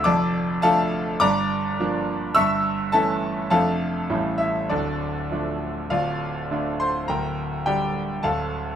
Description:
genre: classical, virtuoso piano study.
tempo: 104 BPM.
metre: 2/4.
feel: rubato.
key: D minor.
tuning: A4 = 440 Hz.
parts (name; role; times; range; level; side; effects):
bright concert grand piano; solo; 0.0-8.8 s; D1 to E6; -21 LUFS; equal; none.
room: light reverb.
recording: minimal, uncompressed stereo recording.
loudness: -21 LUFS.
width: side -9 dB against mid.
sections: 0.0-5.9 A section; 5.9-8.8 B section.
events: none.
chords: 0.1 Dm/F; 1.2 Gm7; 2.4 A7/G; 3.5 Dm/F; 4.1 A7; 4.7 Dm; 7.1 Gm/D; 8.2 Dm.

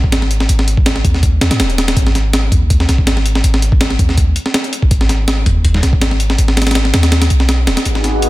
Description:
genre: drum and bass, jungle.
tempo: 163 BPM.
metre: 4/4.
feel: straight.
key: G# minor.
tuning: A4 = 440 Hz.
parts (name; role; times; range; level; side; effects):
warm 808-style bass; bass; 0.0-8.3 s; D#1 to G#2; -14 LUFS; equal; tube saturation.
breakbeat sampler-style drum kit; drums; 0.0-8.3 s; hi-hat, kick drum, snare drum; -14 LUFS; equal; high-pass filter on kick, high-pass filter on hats, high-pass filter on snare.
airy breathy pad; sustained chords; 7.9-8.3 s; B3 to G#4; -16 LUFS; equal; chorus, vintage 12-bit sampler grit.
room: digital ambience.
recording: dense, heavily limited modern master.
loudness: -11 LUFS.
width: side -17 dB against mid.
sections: 0.0-7.9 A section.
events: none.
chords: 0.0 G#5.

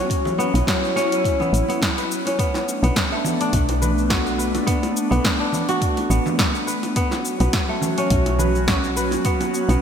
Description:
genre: organic downtempo.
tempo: 105 BPM.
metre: 4/4.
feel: swing 55% on 16ths.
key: B minor.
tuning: A4 = 440 Hz.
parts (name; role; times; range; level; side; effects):
airy breathy pad; sustained chords; 0.0-9.8 s; F#3 to F#4; -24 LUFS; equal; chorus, sidechain pumping.
kora; arpeggios; 0.0-9.8 s; F#3 to B4; -24 LUFS; equal; ping-pong delay.
deep house drum kit; drums; 0.1-9.8 s; cabasa, hi-hat, snare drum; -25 LUFS; equal; gated reverb.
electronic kick drum; drums; 0.1-9.4 s; none; -24 LUFS; equal; none.
bongos and congas; percussion; 0.3-9.8 s; none; -30 LUFS; right 2 dB; none.
woody FM bass; bass; 0.5-9.8 s; A1 to B1; -20 LUFS; equal; tube saturation, sidechain pumping.
room: moderate lush hall reverb, RT60 2.7 s.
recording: bright 1980s-style digital production.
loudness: -18 LUFS.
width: side -8 dB against mid.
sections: 0.0-2.4 A section; 2.4-9.8 B section.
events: none.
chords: 0.0 F#m7/B; 2.4 Bm7; 7.0 F#m/B.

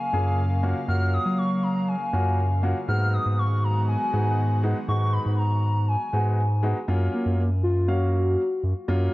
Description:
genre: pop.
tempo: 120 BPM.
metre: 4/4.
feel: straight.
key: F# major.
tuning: A4 = 443 Hz.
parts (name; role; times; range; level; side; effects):
hollow clarinet-like synth lead; melody; 0.0-8.6 s; A#3 to E#6; -28 LUFS; left 1 dB; chorus, ping-pong delay.
airy breathy pad; sustained chords; 0.0-6.8 s; C#3 to E#5; -34 LUFS; equal; chorus.
warm concert grand piano; accompaniment; 0.1-9.1 s; F#3 to E#5; -31 LUFS; equal; none.
round analog bass; bass; 0.1-9.1 s; F#2 to F#3; -23 LUFS; equal; none.
room: light reverb.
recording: worn, warbling old tape, cassette tape, warbly pitch drift.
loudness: -21 LUFS.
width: side -19 dB against mid.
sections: 0.0-6.9 A section; 6.9-9.1 B section.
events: none.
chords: 0.0 F#maj7; 2.9 G#m7; 6.9 F#maj7.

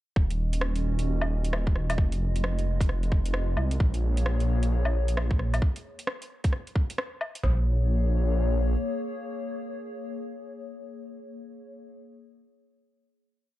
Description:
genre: future garage.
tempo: 132 BPM.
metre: 4/4.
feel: swing 63% on 16ths.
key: Bb minor.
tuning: A4 = 440 Hz.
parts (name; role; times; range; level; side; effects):
warbly tape-like pad; sustained chords; 0.4-11.8 s; Ab3 to Eb5; -35 LUFS; left 2 dB; chorus, built-in reverb, sidechain pumping.
swelling detuned saw bass; bass; 0.2-8.8 s; Eb1 to C2; -25 LUFS; equal; sidechain pumping.
organic electronic drum kit; drums; 0.2-7.6 s; kick drum, snare drum, toms; -25 LUFS; equal; overdrive, vintage 12-bit sampler grit, studio ambience.
garage drum kit; drums; 0.3-7.4 s; hi-hat, rim click, woodblock; -33 LUFS; equal; overdrive, vintage 12-bit sampler grit, studio ambience.
room: digital ambience.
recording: none.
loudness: -25 LUFS.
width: side -15 dB against mid.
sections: 0.2-7.4 groove; 7.4-11.1 final chord.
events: none.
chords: 0.2 Ebm7; 2.0 Fm7; 3.8 Bbm7; 5.6 N.C.; 7.4 Bbm7.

